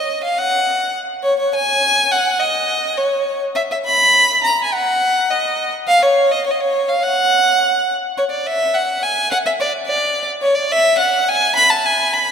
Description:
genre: mexican folk.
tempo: 104 BPM.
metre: 2/4.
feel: rubato.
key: F# major.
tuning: A4 = 440 Hz.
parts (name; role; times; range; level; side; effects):
clear violin; solo; 0.0-12.3 s; C#5 to B5; -14 LUFS; equal; none.
room: wet church reverb, RT60 3.7 s.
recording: recorded in a church or concert hall.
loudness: -14 LUFS.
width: side -7 dB against mid.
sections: 0.0-8.2 A section; 8.2-12.3 B section.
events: none.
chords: none.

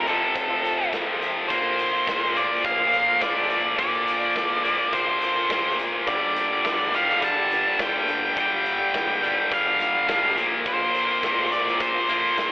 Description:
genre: quiet-loud alternative rock.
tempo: 105 BPM.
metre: 4/4.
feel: straight.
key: unclear.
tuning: A4 = 441 Hz.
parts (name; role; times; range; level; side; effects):
octave-fuzz lead guitar; melody; 0.0-12.5 s; A4 to A5; -23 LUFS; equal; distortion, slapback echo.
electric guitar through a small old amp; arpeggios; 0.0-12.5 s; F2 to G4; -35 LUFS; right 1 dB; slapback echo.
tight distorted guitar; riff; 0.0-12.5 s; F2 to Bb3; -24 LUFS; left 1 dB; distortion, slapback echo.
overdriven picked electric bass; bass; 0.0-12.5 s; G1 to Bb2; -41 LUFS; equal; none.
big rock drum kit; drums; 0.1-12.5 s; hi-hat, kick drum, snare drum; -32 LUFS; equal; none.
room: wet concert hall reverb, RT60 2.4 s.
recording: big arena sound, telephone sound.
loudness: -20 LUFS.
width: side -21 dB against mid.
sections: 0.0-12.5 A section.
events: none.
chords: 0.0 F; 1.5 Bbadd9; 6.1 Gm7; 10.4 Bbadd9.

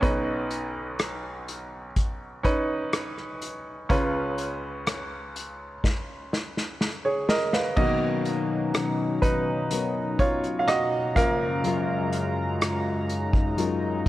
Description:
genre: pop ballad.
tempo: 62 BPM.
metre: 4/4.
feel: straight.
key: unclear.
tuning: A4 = 441 Hz.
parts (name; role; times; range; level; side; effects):
bright grand piano; accompaniment; 0.0-14.1 s; B1 to E#5; -28 LUFS; right 2 dB; none.
unplugged drum kit; drums; 0.0-14.1 s; crash cymbal, hi-hat, kick drum, rim click, snare drum; -27 LUFS; equal; none.
chorused pulse-width pad; sustained chords; 7.8-14.1 s; F#2 to A#5; -28 LUFS; left 1 dB; none.
nylon-string guitar; arpeggios; 7.8-14.1 s; B2 to A#4; -30 LUFS; left 6 dB; ping-pong delay.
room: light reverb, studio reverb.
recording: worn, warbling old tape, cassette tape, warbly pitch drift.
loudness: -24 LUFS.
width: side -15 dB against mid.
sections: 0.0-7.8 A section; 7.8-14.1 B section.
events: drum fill 5.8-7.8; grand piano solo 7.8-14.1.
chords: 0.0 Badd9; 3.9 C#7; 7.8 Bmaj7; 11.2 F#maj7.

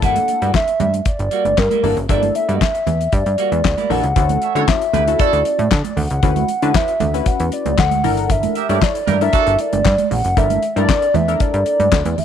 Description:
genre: early-eighties boogie funk.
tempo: 116 BPM.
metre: 4/4.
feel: straight.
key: D major.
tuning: A4 = 439 Hz.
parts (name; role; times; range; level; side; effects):
hollow clarinet-like synth lead; melody; 0.0-12.2 s; Bb4 to F#5; -18 LUFS; equal; chorus, slapback echo.
funky polysynth comp; accompaniment; 0.0-11.9 s; Bb3 to C#5; -23 LUFS; left 14 dB; chorus.
clean electric guitar; riff; 0.0-4.1 s; G3 to F#4; -27 LUFS; right 15 dB; wide subtle chorus.
plucky analog bass; bass; 0.0-12.2 s; F#1 to D3; -20 LUFS; equal; none.
damped 70s drum kit; drums; 0.0-12.2 s; handclaps, hi-hat, kick drum, snare drum; -19 LUFS; left 2 dB; none.
congas; percussion; 0.0-12.2 s; none; -24 LUFS; right 13 dB; none.
bright horn section; second line; 4.4-5.4, 8.6-9.5 s; D4 to E5; -23 LUFS; right 15 dB; none.
room: little or no reverb.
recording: 1960s-style stereo with parts hard left and right.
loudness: -14 LUFS.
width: side -9 dB against mid.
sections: 0.0-4.2 A section; 4.2-12.2 B section.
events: none.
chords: 0.0 Gm6; 4.2 Dmaj9; 8.0 Gm6.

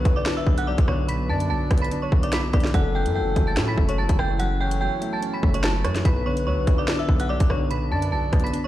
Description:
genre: hip hop, drill.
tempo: 145 BPM.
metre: 4/4.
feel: half-time.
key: unclear.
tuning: A4 = 440 Hz.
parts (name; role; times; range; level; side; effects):
metallic FM bell; melody; 0.0-8.7 s; C#5 to B6; -28 LUFS; right 1 dB; chorus, low-pass filter, tape echo.
breathy flute-like synth lead; second line; 0.0-8.5 s; A4 to D5; -33 LUFS; left 4 dB; chorus, tape echo.
felt-muted upright piano; accompaniment; 0.0-8.7 s; F#2 to D4; -29 LUFS; right 1 dB; low-pass filter.
hollow soft pad; sustained chords; 0.0-8.7 s; F#3 to B4; -35 LUFS; equal; chorus.
distorted 808-style bass; bass; 0.0-8.5 s; F#1 to A2; -24 LUFS; equal; distortion.
drill drum kit; drums; 0.1-8.6 s; hi-hat, kick drum, rim click, snare drum; -22 LUFS; equal; none.
room: little or no reverb.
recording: played on a big sound system in a bare room, large studio reverb.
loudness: -20 LUFS.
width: side -14 dB against mid.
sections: 0.0-8.7 A section.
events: none.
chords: 0.0 Bm; 2.7 F#m7; 6.1 Bm.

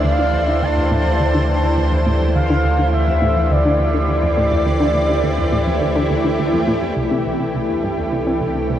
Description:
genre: ambient.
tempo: 104 BPM.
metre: 4/4.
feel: straight.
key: D minor.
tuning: A4 = 444 Hz.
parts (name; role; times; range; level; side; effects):
expressive synth lead; melody; 0.0-6.4 s; D5 to A5; -22 LUFS; equal; analog chorus, tape echo.
lush unison pad; sustained chords; 0.0-8.8 s; E3 to D5; -20 LUFS; equal; chorus.
analog pluck; riff; 0.0-8.7 s; C2 to D3; -22 LUFS; equal; chorus, tape echo.
warm sub bass; bass; 0.0-8.8 s; C2 to D2; -20 LUFS; equal; none.
wind-like tuned noise texture; texture; 0.0-8.8 s; C5; -30 LUFS; left 1 dB; built-in reverb.
room: wet huge ambient reverb, RT60 7.8 s.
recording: worn, warbling old tape, cassette tape, warbly pitch drift.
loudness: -15 LUFS.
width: side -11 dB against mid.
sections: 0.0-7.0 A section; 7.0-8.8 B section.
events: filter sweep on synth arpeggio sound 0.0-7.0.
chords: 0.0 Dm7; 7.0 C.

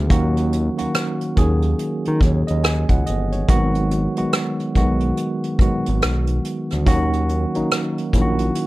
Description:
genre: R&B, neo-soul.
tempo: 71 BPM.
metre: 4/4.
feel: swing 61% on 16ths.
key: G# minor.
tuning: A4 = 440 Hz.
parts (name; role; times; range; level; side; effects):
tine electric piano; accompaniment; 0.0-8.7 s; D#3 to G#5; -21 LUFS; right 1 dB; medium stereo tremolo.
smooth synth bass; bass; 0.0-8.5 s; G1 to D#3; -21 LUFS; equal; none.
vintage brush drum kit; drums; 0.1-8.7 s; hi-hat, kick drum, rim click; -20 LUFS; equal; none.
room: little or no reverb.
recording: none.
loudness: -17 LUFS.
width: side -18 dB against mid.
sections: 0.0-8.7 A section.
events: none.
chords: 0.1 D#m7; 3.5 G#m7; 6.9 D#m7.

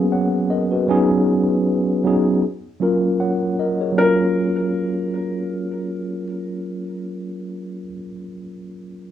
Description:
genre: hip hop.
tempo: 78 BPM.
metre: 4/4.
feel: swing 58% on 16ths.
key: F# major.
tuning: A4 = 441 Hz.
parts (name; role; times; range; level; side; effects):
mellow tine electric piano; accompaniment; 0.0-9.1 s; F#3 to F#5; -19 LUFS; equal; medium stereo tremolo.
felt-muted upright piano; melody; 4.0-6.2 s; A#4; -21 LUFS; left 1 dB; plate reverb, tape echo.
room: wet studio reverb, RT60 0.5 s.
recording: rough home demo mix, cassette tape.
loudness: -18 LUFS.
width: side -10 dB against mid.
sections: 0.0-4.0 A section; 4.0-7.0 B section.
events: none.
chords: 0.0 G#m11; 0.9 C#9sus4; 2.4 F#maj7.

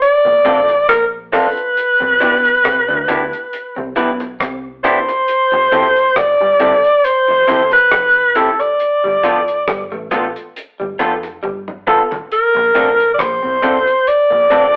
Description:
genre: lovers rock reggae.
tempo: 68 BPM.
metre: 4/4.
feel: swing 55% on 16ths.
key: C major.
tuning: A4 = 440 Hz.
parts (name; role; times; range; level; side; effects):
warm alto saxophone; melody; 0.0-14.8 s; A4 to D5; -14 LUFS; equal; none.
damped 70s drum kit; drums; 0.0-14.8 s; hi-hat, kick drum, rim click, toms; -26 LUFS; equal; none.
electric guitar through a small old amp; riff; 0.2-14.8 s; E3 to D4; -30 LUFS; equal; none.
deep dub fingered electric bass; bass; 0.3-14.8 s; E1 to D2; -32 LUFS; equal; none.
electric guitar through a small old amp; stabs; 0.4-14.6 s; B3 to B4; -21 LUFS; equal; none.
barky tine electric piano; accompaniment; 0.5-14.7 s; A3 to A4; -24 LUFS; equal; none.
room: wet studio reverb, RT60 0.7 s.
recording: rough rehearsal-room recording, warm saturation, telephone sound.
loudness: -14 LUFS.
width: mono.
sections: 0.0-14.8 A section.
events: drum fill 11.4-12.3.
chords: 0.0 Bbmaj9; 1.8 Cmaj9; 5.3 Fmaj7; 8.8 G9; 12.3 Bbmaj9.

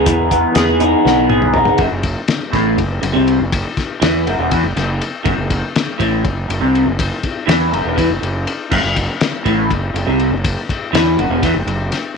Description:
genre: psychedelic rock.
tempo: 243 BPM (eighths).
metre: 7/8.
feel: straight.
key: F# minor.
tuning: A4 = 439 Hz.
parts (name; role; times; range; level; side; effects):
electric guitar through a small old amp; riff; 0.0-11.9 s; E2 to G#4; -15 LUFS; equal; phaser, double-tracked left and right.
fuzz fingered electric bass; bass; 0.0-11.9 s; E1 to E2; -20 LUFS; right 1 dB; overdrive.
cloth-damped thuddy drum kit; drums; 0.1-12.0 s; crash cymbal, hi-hat, kick drum, ride cymbal, snare drum, toms; -19 LUFS; left 4 dB; none.
congas; percussion; 0.1-1.8 s; none; -29 LUFS; right 10 dB; none.
room: light reverb, small room ambience.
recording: 1960s-style stereo.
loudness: -14 LUFS.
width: side -5 dB against mid.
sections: 0.0-1.8 A section; 1.8-12.2 B section.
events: drum fill 1.1-1.8.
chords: 0.0 Emaj7; 1.8 F#m.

